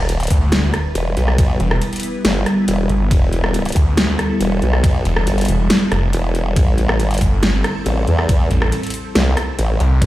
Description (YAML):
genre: heavy wobble dubstep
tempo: 139 BPM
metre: 4/4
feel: half-time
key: E minor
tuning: A4 = 440 Hz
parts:
  - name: evolving wavetable pad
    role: sustained chords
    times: 0.6-10.1 s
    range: G3 to B4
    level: -23 LUFS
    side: equal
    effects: ensemble chorus, built-in reverb, phaser, sidechain pumping
  - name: formant-sweep wobble bass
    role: bass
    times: 0.0-10.1 s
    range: E1 to E2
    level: -17 LUFS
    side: equal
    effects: chorus, overdrive
  - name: sub drop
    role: sound effects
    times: 0.0-1.4 s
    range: none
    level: -30 LUFS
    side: equal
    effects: none
  - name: big-room dance drum kit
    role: drums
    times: 0.1-10.1 s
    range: hi-hat, ride cymbal, rim click, snare drum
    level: -20 LUFS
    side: equal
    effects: none
  - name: snarling distorted saw bass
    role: bass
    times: 0.3-10.0 s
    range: E1 to D2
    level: -16 LUFS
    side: equal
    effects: distortion, overdrive
  - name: electronic kick drum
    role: drums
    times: 0.3-10.1 s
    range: none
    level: -15 LUFS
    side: equal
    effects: none
room: light reverb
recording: played on a big sound system in a bare room, stone room reverb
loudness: -14 LUFS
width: side -15 dB against mid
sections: 0.0-10.1 A section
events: impact 0.0-1.4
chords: 0.0 Em; 6.6 Am7